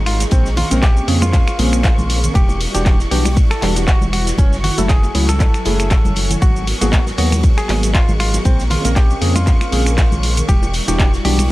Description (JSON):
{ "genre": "deep house", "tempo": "118 BPM", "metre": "4/4", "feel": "swing 55% on 16ths", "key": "unclear", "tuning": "A4 = 443 Hz", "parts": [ { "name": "soft string machine", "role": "sustained chords", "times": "0.0-11.5 s", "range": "F#3 to D5", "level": "-27 LUFS", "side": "equal", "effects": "ensemble chorus, sidechain pumping" }, { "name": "round analog bass", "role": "bass", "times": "0.0-11.5 s", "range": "E1 to E#2", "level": "-18 LUFS", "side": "equal", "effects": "tube saturation, sidechain pumping" }, { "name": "analog string pad", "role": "texture", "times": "0.0-11.5 s", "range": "C#6", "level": "-32 LUFS", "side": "right 1 dB", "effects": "ensemble chorus" }, { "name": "ethereal airy pad", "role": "texture", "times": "0.0-11.5 s", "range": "E4 to A#5", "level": "-33 LUFS", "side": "equal", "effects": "ensemble chorus, built-in reverb, sidechain pumping" }, { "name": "direct-recorded clean electric guitar", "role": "melody", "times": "0.1-11.5 s", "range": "B#3 to A4", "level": "-25 LUFS", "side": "equal", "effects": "none" }, { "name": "house drum kit", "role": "drums", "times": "0.1-11.5 s", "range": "finger snaps, handclaps, hi-hat, shaker", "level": "-23 LUFS", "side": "equal", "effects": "small room ambience" }, { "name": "loose indie drum kit", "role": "drums", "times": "0.1-11.5 s", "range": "hi-hat, ride cymbal, snare drum", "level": "-32 LUFS", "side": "left 1 dB", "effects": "sidechain pumping on cymbals, high-pass filter on cymbals, small room ambience, sidechain pumping on hats, high-pass filter on hats, high-pass filter on snare, high-pass filter on room" }, { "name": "bongos and congas", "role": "percussion", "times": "0.2-11.5 s", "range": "none", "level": "-26 LUFS", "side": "right 1 dB", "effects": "none" }, { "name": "electronic kick drum", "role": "drums", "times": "0.3-11.1 s", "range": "none", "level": "-14 LUFS", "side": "equal", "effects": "small room ambience" }, { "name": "percussive organ stab", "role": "stabs", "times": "0.7-11.4 s", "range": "C#3 to A#4", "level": "-22 LUFS", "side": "equal", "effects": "analog chorus, sidechain pumping, tape echo" } ], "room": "little or no reverb", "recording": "none", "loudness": "-13 LUFS", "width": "side -18 dB against mid", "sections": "0.0-11.5 A section", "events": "none", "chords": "0.3 A#m9; 2.4 Em9; 4.4 F#m9; 6.4 G#m9; 8.5 A#m9; 10.5 Em9" }